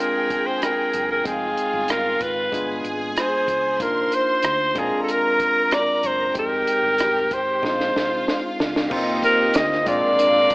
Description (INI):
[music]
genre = lush 1970s-style soul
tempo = 94 BPM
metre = 4/4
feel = straight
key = unclear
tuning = A4 = 440 Hz
[part]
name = breathy alto saxophone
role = melody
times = 0.0-10.5 s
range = Ab4 to Eb5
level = -20 LUFS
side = equal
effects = slapback echo
[part]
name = warm studio string section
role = second line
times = 0.0-10.5 s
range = Bb3 to C6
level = -28 LUFS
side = equal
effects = none
[part]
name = barky tine electric piano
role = accompaniment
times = 0.0-10.5 s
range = Ab3 to G5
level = -28 LUFS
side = left 1 dB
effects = overdrive
[part]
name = compact cocktail drum kit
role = drums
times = 0.0-10.5 s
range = crash cymbal, hi-hat, kick drum, rim click, snare drum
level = -26 LUFS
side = equal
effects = none
[part]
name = hollow-body short-scale fingered electric bass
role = bass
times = 0.9-10.0 s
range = F1 to D2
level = -40 LUFS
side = equal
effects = none
[part]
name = mellow French horn section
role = sustained chords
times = 8.9-10.5 s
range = C3 to F4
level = -34 LUFS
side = right 1 dB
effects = none
[part]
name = vibraphone with soft mallets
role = texture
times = 9.2-10.2 s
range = C5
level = -36 LUFS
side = right 1 dB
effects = none
[sound]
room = moderate echo chamber reverb, RT60 1.8 s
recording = AM radio sound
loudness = -18 LUFS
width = side -24 dB against mid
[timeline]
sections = 0.0-8.9 A section; 8.9-10.5 B section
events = drum fill 7.6-8.9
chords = 0.0 Bb7; 1.3 Fm9; 2.5 G7b9; 3.8 Cm11; 4.8 Bb7; 6.4 Fm9; 7.6 Bb9sus4; 8.9 Cm11; 9.9 Bb7